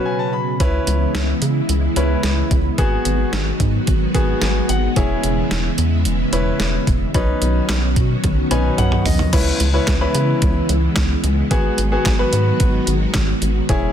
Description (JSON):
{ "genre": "synth-pop", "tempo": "110 BPM", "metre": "4/4", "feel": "straight", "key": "C# minor", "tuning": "A4 = 440 Hz", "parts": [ { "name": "clear grand piano", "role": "accompaniment", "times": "0.0-13.9 s", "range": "B3 to B5", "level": "-22 LUFS", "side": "left 2 dB", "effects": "none" }, { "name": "string machine, violas", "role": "sustained chords", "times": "0.0-13.9 s", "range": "B2 to F#4", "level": "-22 LUFS", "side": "equal", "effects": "ensemble chorus" }, { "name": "rubbery square bass", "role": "bass", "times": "0.6-13.9 s", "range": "E1 to C#3", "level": "-20 LUFS", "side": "equal", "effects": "none" }, { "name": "detuned 8-bit digital drum machine", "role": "drums", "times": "0.6-13.8 s", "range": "crash cymbal, handclaps, hi-hat, kick drum, snare drum, toms", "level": "-20 LUFS", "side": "equal", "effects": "none" } ], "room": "light reverb", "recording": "dense, heavily limited modern master", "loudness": "-15 LUFS", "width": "side -9 dB against mid", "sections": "0.0-9.3 A section; 9.3-13.9 B section", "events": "grand piano fill 0.0-0.6, 4.1-5.0, 8.2-9.3; break 0.1-0.6; drum fill 8.2-9.3", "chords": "0.0 Bsus2; 0.6 C#m7; 2.8 G#m7; 5.0 E6; 7.1 Badd9; 9.3 C#m7; 11.5 G#m7" }